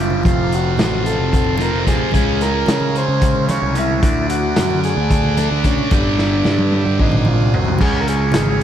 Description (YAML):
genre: psychedelic rock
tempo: 222 BPM (eighths)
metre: 7/8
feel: straight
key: unclear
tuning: A4 = 440 Hz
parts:
  - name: combo organ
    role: melody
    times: 0.0-8.6 s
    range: Db4 to Db5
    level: -21 LUFS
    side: equal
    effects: analog delay
  - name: combo organ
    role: sustained chords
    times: 0.0-8.6 s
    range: A3 to Eb6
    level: -27 LUFS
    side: right 4 dB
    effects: none
  - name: thick fuzz guitar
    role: riff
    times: 0.0-8.6 s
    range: F2 to D4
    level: -21 LUFS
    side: equal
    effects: distortion, phaser
  - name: fuzz picked electric bass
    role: bass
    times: 0.0-8.6 s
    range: F1 to Db3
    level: -20 LUFS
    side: equal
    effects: overdrive
  - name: congas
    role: percussion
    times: 0.1-8.6 s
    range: none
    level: -28 LUFS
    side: right 3 dB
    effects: none
  - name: vintage drum kit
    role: drums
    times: 0.3-8.6 s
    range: crash cymbal, hi-hat, kick drum, snare drum, toms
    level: -19 LUFS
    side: equal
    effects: none
room: light reverb, studio ambience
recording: none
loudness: -14 LUFS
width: side -10 dB against mid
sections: 0.0-7.8 A section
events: drum fill 6.2-7.8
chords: 0.2 F; 2.1 Db; 4.0 D; 5.9 G6; 7.0 Ab7; 7.8 Db